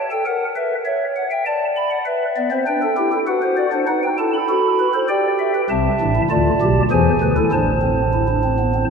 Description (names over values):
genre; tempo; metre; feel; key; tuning
classical, baroque-style 4-part fugue for pipe organ; 99 BPM; 3/4; straight; E minor, A minor from 5.7 s; A4 = 441 Hz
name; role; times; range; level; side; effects
pipe organ, stopped flute; solo; 0.0-8.9 s; A1 to B5; -16 LUFS; equal; none
room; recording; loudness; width
wet cathedral reverb, RT60 4.3 s; none; -16 LUFS; side -5 dB against mid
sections
0.0-5.7 A section; 5.7-8.9 B section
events
none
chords
0.3 F#7/A#; 1.5 Bm/D; 2.1 Em/B; 3.3 D7; 3.9 B7/D#; 5.1 Em/G; 5.7 Am/C; 6.3 Bm7b5/D; 6.9 E7; 7.5 Am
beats
| 0.27 0.86 1.46 | 2.07 2.67 3.27 | 3.87 4.48 5.09 | 5.70 6.30 6.91 | 7.52 8.14 8.75